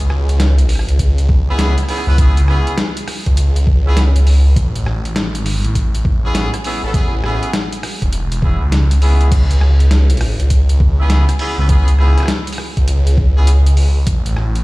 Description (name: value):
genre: glitch hop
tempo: 101 BPM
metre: 4/4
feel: swing 64% on 16ths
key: C# minor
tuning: A4 = 440 Hz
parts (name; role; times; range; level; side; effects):
- phased detuned saw bass; bass; 0.0-14.6 s; E1 to C#2; -13 LUFS; equal; phaser
- boom bap sampler-style drum kit; drums; 0.1-14.6 s; crash cymbal, hi-hat, rim click, snare drum; -23 LUFS; equal; small room reverb
- electronic kick drum; drums; 1.0-14.2 s; none; -15 LUFS; equal; small room reverb
- bright horn section; stabs; 1.5-13.5 s; B3 to B4; -24 LUFS; equal; vintage 12-bit sampler grit, sidechain pumping, ping-pong delay
room: little or no reverb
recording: played on a big sound system in a bare room, large studio reverb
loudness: -12 LUFS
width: side -21 dB against mid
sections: 0.0-14.6 A section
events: none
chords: 0.0 C#m7; 4.6 Amaj7; 9.3 C#m7; 14.1 N.C.